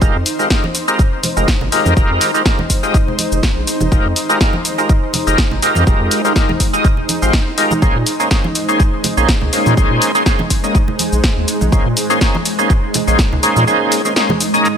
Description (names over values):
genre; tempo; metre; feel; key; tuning
deep house; 123 BPM; 4/4; swing 54% on 16ths; F minor; A4 = 441 Hz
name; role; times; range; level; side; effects
overdriven tonewheel organ; stabs; 0.0-14.7 s; Ab3 to Eb5; -17 LUFS; equal; chorus vibrato, slow rotary speaker, sidechain pumping, ping-pong delay
round analog bass; bass; 0.0-13.6 s; F1 to Bb2; -17 LUFS; equal; sidechain pumping
electronic kick drum; drums; 0.0-13.3 s; none; -14 LUFS; equal; none
punchy analog drum machine; drums; 0.0-14.8 s; cabasa, hi-hat, snare drum; -19 LUFS; left 1 dB; none
granular cloud pad; texture; 0.0-14.8 s; Ab3 to C5; -21 LUFS; right 1 dB; built-in reverb, sidechain pumping
congas and bongos; percussion; 0.6-14.4 s; none; -24 LUFS; right 1 dB; none
room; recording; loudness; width
light reverb, digital ambience; none; -12 LUFS; side -8 dB against mid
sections
0.0-14.8 A section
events
none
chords
0.0 Fm11; 7.8 Bbm11